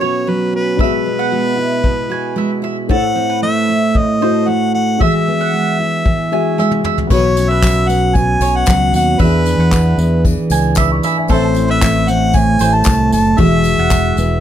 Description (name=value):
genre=acoustic pop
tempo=114 BPM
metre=4/4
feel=straight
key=E major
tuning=A4 = 439 Hz
part: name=warm harmonica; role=melody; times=0.0-14.4 s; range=B4 to A5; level=-18 LUFS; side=left 1 dB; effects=none
part: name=felt-muted upright piano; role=accompaniment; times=0.0-14.4 s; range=B2 to D6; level=-21 LUFS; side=left 7 dB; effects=none
part: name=picked steel-string acoustic guitar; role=accompaniment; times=0.0-14.4 s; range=A2 to A4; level=-17 LUFS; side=right 3 dB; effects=none
part: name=mandolin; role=arpeggios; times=0.0-14.2 s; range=A4 to G#5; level=-23 LUFS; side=right 8 dB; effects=none
part: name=soft brush drum kit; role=drums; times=0.8-14.3 s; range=crash cymbal, handclaps, kick drum, snare drum, tambourine, toms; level=-17 LUFS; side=left 1 dB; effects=none
part: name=fingered electric bass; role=bass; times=7.1-14.4 s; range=E1 to E2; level=-16 LUFS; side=left 1 dB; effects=none
part: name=tambourine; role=percussion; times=7.1-14.3 s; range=none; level=-30 LUFS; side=left 8 dB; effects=none
room=little or no reverb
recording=close, detailed microphones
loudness=-12 LUFS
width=side -10 dB against mid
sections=0.0-7.1 A section; 7.1-14.4 B section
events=felt piano fill 6.1-7.1; drum fill 6.6-7.1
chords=0.0 Bsus2; 0.8 Eadd9/B; 2.9 Am; 5.0 Eadd9; 7.1 Bsus2; 9.2 E7; 11.3 Am; 13.4 Eadd9